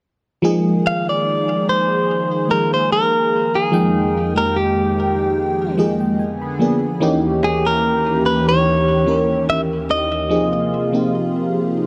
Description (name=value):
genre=R&B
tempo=73 BPM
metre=4/4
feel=swing 54% on 16ths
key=unclear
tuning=A4 = 436 Hz
part: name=FM electric piano with soft pad layer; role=accompaniment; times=0.4-11.9 s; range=Fb3 to Cb6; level=-21 LUFS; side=equal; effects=chorus, phaser
part: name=warm analog pad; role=sustained chords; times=0.4-11.9 s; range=Eb2 to G5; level=-26 LUFS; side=equal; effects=chorus
part: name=direct-recorded clean electric guitar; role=melody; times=0.9-11.5 s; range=G4 to F5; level=-21 LUFS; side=equal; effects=warbly pitch drift, delay
room=light reverb, digital ambience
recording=dark, warm production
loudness=-18 LUFS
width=mono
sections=0.4-11.9 A section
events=FM electric piano fill 5.4-7.0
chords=0.4 Bb7sus4; 3.7 Fm11; 6.2 Bb7b9; 7.0 Eb7b9; 10.3 Ab69